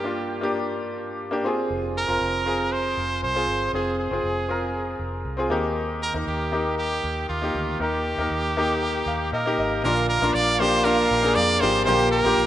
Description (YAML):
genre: piano-driven pop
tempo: 118 BPM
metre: 4/4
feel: straight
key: unclear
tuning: A4 = 443 Hz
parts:
  - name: brilliant trumpet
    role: melody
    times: 0.0-12.5 s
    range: F4 to D5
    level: -25 LUFS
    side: right 2 dB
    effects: none
  - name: bright concert grand piano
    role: accompaniment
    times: 0.0-12.5 s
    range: G2 to Bb5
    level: -24 LUFS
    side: left 1 dB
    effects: none
  - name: vintage muted fingered electric bass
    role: bass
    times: 1.7-12.5 s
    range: F1 to Bb2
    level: -31 LUFS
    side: equal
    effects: none
  - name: rich studio violin section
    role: second line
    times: 9.8-12.5 s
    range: F4 to G5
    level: -29 LUFS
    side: right 4 dB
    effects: none
  - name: fingerpicked steel-string acoustic guitar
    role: riff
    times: 9.8-12.5 s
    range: Bb2 to Bb4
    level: -31 LUFS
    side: right 5 dB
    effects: none
  - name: tube shaker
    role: percussion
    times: 9.8-12.5 s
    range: none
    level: -47 LUFS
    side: right 10 dB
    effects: none
room: wet lush hall reverb, RT60 2.7 s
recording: rough home demo mix, nothing above 10.4 kHz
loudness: -21 LUFS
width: side -12 dB against mid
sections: 0.0-9.8 A section; 9.8-12.5 B section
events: grand piano fill 8.3-9.8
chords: 0.0 Gm; 1.4 Fm; 5.5 Eb; 9.8 Bb; 11.9 Gm7/Bb